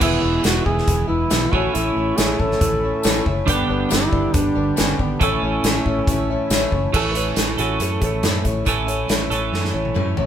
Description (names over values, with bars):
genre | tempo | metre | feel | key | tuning
folk rock and heartland rock | 139 BPM | 4/4 | straight | A major | A4 = 440 Hz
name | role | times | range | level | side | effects
mellow duduk | melody | 0.0-6.5 s | B3 to A4 | -23 LUFS | equal | none
picked old ladder-braced acoustic guitar | accompaniment | 0.0-10.3 s | E2 to G4 | -26 LUFS | left 6 dB | none
warm upright piano | accompaniment | 0.0-6.9 s | D4 to C#5 | -33 LUFS | left 6 dB | none
mellow accordion | sustained chords | 0.0-6.9 s | G3 to A4 | -31 LUFS | equal | none
twelve-string electric guitar | riff | 0.0-10.3 s | E2 to A4 | -24 LUFS | right 6 dB | none
fingered electric bass | bass | 0.0-10.3 s | E1 to F#2 | -25 LUFS | equal | none
natural country drum kit | drums | 0.0-10.3 s | crash cymbal, hi-hat, kick drum, snare drum, toms | -22 LUFS | equal | none
tambourine | percussion | 0.4-6.6 s | none | -31 LUFS | left 7 dB | none
clear upright piano | second line | 6.9-8.4 s | F#4 to B4 | -29 LUFS | right 3 dB | none
room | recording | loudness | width
light reverb | band playing live in one room | -17 LUFS | side -9 dB against mid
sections
0.0-6.9 A section; 6.9-10.3 B section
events
drum fill 9.5-10.3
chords
0.0 E; 1.5 A; 3.5 G; 5.2 A